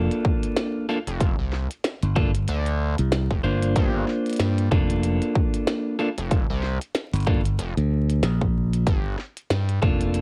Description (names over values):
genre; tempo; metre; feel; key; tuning
glitch hop; 94 BPM; 4/4; swing 58% on 16ths; G minor; A4 = 441 Hz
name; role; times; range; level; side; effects
electric guitar at the edge of break-up; stabs; 0.0-10.2 s; Bb3 to C5; -28 LUFS; equal; sidechain pumping, cassette tape, analog delay
modern bright fingered electric bass; bass; 0.0-10.2 s; F1 to D2; -25 LUFS; equal; none
impact; sound effects; 0.1-1.2 s; none; -47 LUFS; equal; none
glitchy drum kit; drums; 0.1-10.2 s; hi-hat, snare drum; -30 LUFS; equal; cassette tape
electronic kick drum; drums; 0.2-10.0 s; none; -25 LUFS; equal; cassette tape
gritty driven synth bass; bass; 1.1-9.8 s; F1 to G2; -27 LUFS; equal; tube saturation
room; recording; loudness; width
little or no reverb; home recording on cassette, vinyl crackle; -24 LUFS; mono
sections
0.0-10.2 A section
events
impact 0.0-1.2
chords
0.0 Gm7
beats
0.57 | 1.21 1.84 2.48 3.12 | 3.76 4.40 5.03 5.67 | 6.31 6.95 7.59 8.23 | 8.86 9.50 10.14